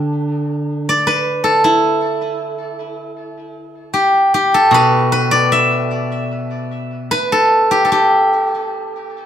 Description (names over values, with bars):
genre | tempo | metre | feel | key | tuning
chinese traditional, Chinese solo plucked strings | 77 BPM | 4/4 | rubato | G gong mode | A4 = 440 Hz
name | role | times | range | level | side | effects
steel-string zither | solo | 0.0-9.3 s | B2 to E5 | -14 LUFS | equal | tape echo
room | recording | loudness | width
moderate stone room reverb, RT60 1.1 s | band playing live in one room | -13 LUFS | side -9 dB against mid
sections
0.0-9.3 A section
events
none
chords
none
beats
| 0.11 0.88 1.64 2.40 | 3.17 3.95 4.73 5.52 | 6.31 7.11 7.91 8.74